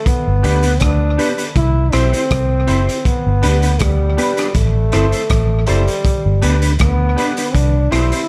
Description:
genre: roots reggae.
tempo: 80 BPM.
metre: 4/4.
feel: straight.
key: G major.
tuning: A4 = 440 Hz.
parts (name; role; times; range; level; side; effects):
clear trombone; melody; 0.0-8.3 s; G3 to E4; -23 LUFS; equal; dub echo.
crunchy breakbeat drum kit; drums; 0.1-8.3 s; hi-hat, kick drum, rim click; -22 LUFS; equal; none.
vintage muted fingered electric bass; bass; 0.3-8.1 s; F#1 to D2; -17 LUFS; equal; none.
clean electric guitar; accompaniment; 0.4-8.2 s; B3 to C5; -26 LUFS; equal; ensemble chorus, dub echo.
clear baby grand piano; stabs; 0.4-8.2 s; D4 to C5; -28 LUFS; equal; none.
room: small room reverb.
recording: none.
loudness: -15 LUFS.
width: mono.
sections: 0.0-8.3 A section.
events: none.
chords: 0.1 G; 1.6 C; 3.1 G; 4.6 Am; 6.0 G; 7.5 C.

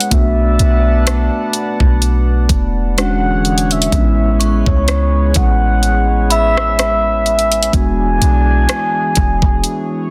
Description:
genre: contemporary R&B.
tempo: 63 BPM.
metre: 4/4.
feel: swing 54% on 16ths.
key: A major.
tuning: A4 = 439 Hz.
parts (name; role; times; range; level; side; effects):
mellow horn-like synth lead; melody; 0.0-10.1 s; C#5 to G#5; -20 LUFS; equal; chorus, digital delay.
mellow tine electric piano; accompaniment; 0.0-10.1 s; G#3 to F#4; -22 LUFS; equal; none.
chorused pulse-width pad; sustained chords; 0.0-10.1 s; D3 to A5; -27 LUFS; equal; none.
smooth R&B drum kit; drums; 0.0-9.9 s; hi-hat, kick drum, rim click; -18 LUFS; equal; none.
clean 808-style bass; bass; 0.1-9.6 s; E1 to C#2; -17 LUFS; equal; none.
synth chime; texture; 4.4-8.2 s; B5 to C#6; -30 LUFS; equal; ensemble chorus, tremolo, digital delay.
room: light reverb, digital ambience.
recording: dense, heavily limited modern master.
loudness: -14 LUFS.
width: mono.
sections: 0.0-10.1 A section.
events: break 9.6-10.1.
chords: 0.1 E9sus4/B; 3.0 E13; 3.9 Amaj9; 7.7 E7.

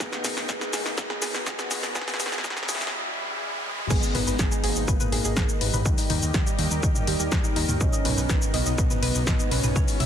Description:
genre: melodic techno.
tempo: 123 BPM.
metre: 4/4.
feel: straight.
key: G# minor.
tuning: A4 = 440 Hz.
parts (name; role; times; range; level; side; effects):
expressive portamento lead; melody; 0.0-10.1 s; G3 to C#4; -34 LUFS; left 1 dB; wide subtle chorus, sidechain pumping, digital delay.
lush unison pad; sustained chords; 0.0-10.1 s; B2 to G4; -36 LUFS; equal; chorus, sidechain pumping.
soft round pluck; arpeggios; 0.0-10.1 s; D#4 to E5; -33 LUFS; right 1 dB; chorus, sidechain pumping, ping-pong delay.
fat analog bass; bass; 0.0-10.1 s; G#1 to D#2; -28 LUFS; equal; sidechain pumping.
bowed-like drone; drone; 6.2-10.1 s; G#2; -42 LUFS; right 1 dB; none.
electronic kick drum; drums; 0.0-9.9 s; none; -25 LUFS; equal; none.
punchy analog drum machine; drums; 0.0-10.1 s; crash cymbal, hi-hat, shaker, snare drum, toms; -28 LUFS; left 1 dB; sidechain pumping on hats, sidechain pumping on perc, sidechain pumping on toms, sidechain pumping on cymbals.
riser; sound effects; 0.1-3.9 s; none; -36 LUFS; right 1 dB; none.
granular cloud pad; texture; 0.0-10.1 s; B3 to B5; -37 LUFS; equal; built-in reverb, sidechain pumping.
room: light reverb, digital ambience.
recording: dense, heavily limited modern master, high-pass filter.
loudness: -22 LUFS.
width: side -9 dB against mid.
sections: 0.0-3.9 A section; 3.9-10.1 B section.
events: build-up 0.0-3.9; drum fill 0.0-2.9, 3.7; filter sweep on synth arpeggio sound 0.0-3.9; filter sweep on analog synth lead 0.0-3.9; filter sweep on analog synth pad 0.0-3.9; riser 0.1-3.9; break 2.9-3.9; drop 3.9-10.1.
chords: 0.0 Badd9; 2.0 C#m; 3.9 G#m; 5.9 D#; 7.8 Badd9.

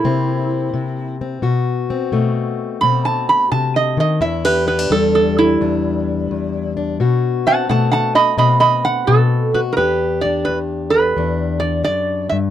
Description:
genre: acoustic country blues, solo or duo.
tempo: 86 BPM.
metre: 4/4.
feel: swing 66% on 8ths.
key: E minor.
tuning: A4 = 440 Hz.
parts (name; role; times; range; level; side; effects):
metal-body resonator slide guitar; melody; 0.0-12.4 s; E4 to B5; -16 LUFS; right 3 dB; none.
fingerpicked plugged-in steel-string acoustic guitar; accompaniment; 0.0-12.5 s; E2 to G4; -18 LUFS; left 4 dB; none.
room: moderate booth ambience, RT60 0.2 s.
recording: dry, close 1970s-style studio recording.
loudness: -15 LUFS.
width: side -11 dB against mid.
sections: 0.0-9.8 A section; 9.8-12.5 B section.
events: resonator guitar played with a steel bar solo 0.0-9.8.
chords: 0.0 C7; 1.4 B7(no3); 4.2 Em7; 7.0 B7b9; 9.8 Em7.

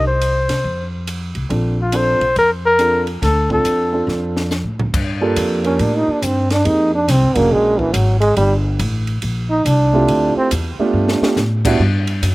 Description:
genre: jazz, small-group swing and bop.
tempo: 140 BPM.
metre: 4/4.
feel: swing 65% on 8ths.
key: Bb major, G minor from 4.9 s.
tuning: A4 = 440 Hz.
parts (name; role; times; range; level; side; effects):
trumpet with bucket mute; melody; 0.0-4.1 s; F4 to C5; -16 LUFS; left 1 dB; none.
warm concert grand piano; accompaniment; 0.0-11.8 s; G3 to Bb4; -20 LUFS; right 2 dB; none.
upright bass; bass; 0.0-12.3 s; F1 to C3; -19 LUFS; equal; none.
compact cocktail drum kit; drums; 0.2-12.3 s; crash cymbal, hi-hat, kick drum, ride cymbal, snare drum, toms; -25 LUFS; equal; none.
clear trombone; second line; 5.7-10.5 s; E3 to Eb4; -16 LUFS; right 1 dB; none.
room: little or no reverb.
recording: recorded outdoors, with no room sound.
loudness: -14 LUFS.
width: side -20 dB against mid.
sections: 0.0-4.9 A section; 4.9-12.3 B section.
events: drum fill 4.1-4.9, 10.9-11.4; trombone solo 4.9-12.3.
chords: 0.0 N.C.; 0.6 F5; 1.5 Bbmaj9; 4.9 Gm9; 6.7 Fm11; 7.5 Bb7alt; 8.4 Gmadd9; 10.1 Dm11; 10.9 G9; 11.8 N.C..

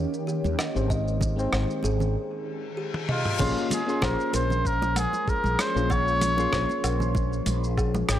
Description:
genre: sunset chillout.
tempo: 96 BPM.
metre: 4/4.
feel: swing 54% on 16ths.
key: Bb dorian.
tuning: A4 = 445 Hz.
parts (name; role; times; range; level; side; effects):
mellow FM electric piano; accompaniment; 0.0-8.2 s; Ab3 to C6; -31 LUFS; moving between left 4 dB and right 4 dB; chorus, auto-pan, analog delay.
shimmering ambient pad; sustained chords; 0.0-8.2 s; Eb3 to G4; -35 LUFS; right 2 dB; chorus, built-in reverb, phaser.
mellow fretless electric bass; bass; 0.0-8.2 s; Ab1 to Eb2; -27 LUFS; equal; ensemble chorus.
dusty soul sampler-style drum kit; drums; 0.1-8.2 s; crash cymbal, hi-hat, rim click, shaker, toms, woodblock; -31 LUFS; equal; none.
kalimba; arpeggios; 0.3-8.2 s; G4 to Eb5; -33 LUFS; left 3 dB; analog delay.
congas; percussion; 0.4-8.1 s; none; -33 LUFS; right 2 dB; none.
electronic kick drum; drums; 0.9-7.9 s; none; -29 LUFS; equal; none.
reverse cymbal; sound effects; 2.6-3.4 s; none; -35 LUFS; left 6 dB; none.
trumpet with cup mute; melody; 3.1-8.2 s; F4 to Db5; -28 LUFS; equal; vintage 12-bit sampler grit, analog delay.
room: light reverb.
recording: dry, gritty hardware recording.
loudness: -23 LUFS.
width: side -11 dB against mid.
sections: 0.0-3.4 A section; 3.4-8.2 B section.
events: break 2.2-3.4; reverse cymbal 2.6-3.4; drum fill 2.9-3.4.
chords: 0.0 Eb7; 0.9 Abmaj7; 3.4 Bbm9.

